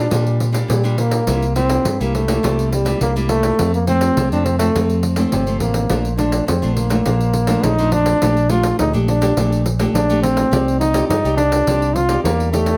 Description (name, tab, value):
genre	samba and choro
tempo	104 BPM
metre	4/4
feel	straight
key	unclear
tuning	A4 = 444 Hz
part	warm trombone	melody	0.0-12.8 s	G3 to F4	-21 LUFS	equal	plate reverb
part	nylon-string guitar	accompaniment	0.0-12.8 s	F2 to D5	-24 LUFS	equal	none
part	vintage muted fingered electric bass	bass	0.0-12.7 s	G1 to Bb2	-22 LUFS	equal	none
part	pandeiro	percussion	0.1-12.8 s	none	-26 LUFS	equal	none
room	moderate studio reverb, RT60 0.6 s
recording	none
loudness	-17 LUFS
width	mono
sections	0.0-12.8 A section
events	none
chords	0.0 Gm7; 1.3 C7; 3.6 F; 5.9 Bbmaj7; 8.2 Gmadd9/Bb; 10.5 Cmadd9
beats	0.12 0.70 | 1.27 1.85 2.43 3.01 | 3.59 4.17 4.74 5.32 | 5.90 6.48 7.05 7.63 | 8.21 8.79 9.36 9.94 | 10.52 11.09 11.67 12.24